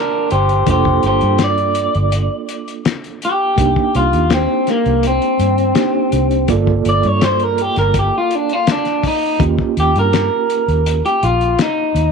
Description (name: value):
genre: straight-eighth soul blues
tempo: 82 BPM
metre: 4/4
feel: straight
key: G minor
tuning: A4 = 440 Hz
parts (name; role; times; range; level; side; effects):
- electric guitar through a small old amp; melody; 0.0-12.1 s; Bb3 to D5; -16 LUFS; left 1 dB; none
- reed electric piano; accompaniment; 0.0-12.1 s; Bb3 to D5; -22 LUFS; right 12 dB; fast tremolo
- vintage muted fingered electric bass; bass; 0.3-12.1 s; F1 to G2; -17 LUFS; equal; none
- cloth-damped thuddy drum kit; drums; 0.3-12.1 s; hi-hat, kick drum, snare drum; -20 LUFS; left 5 dB; none
room: light reverb, small room ambience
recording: 1960s-style stereo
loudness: -13 LUFS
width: side -5 dB against mid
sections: 0.0-12.1 A section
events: clean electric guitar solo 0.0-12.1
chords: 0.0 Gm7; 3.6 Cm7; 6.5 Gm7; 9.4 Eb7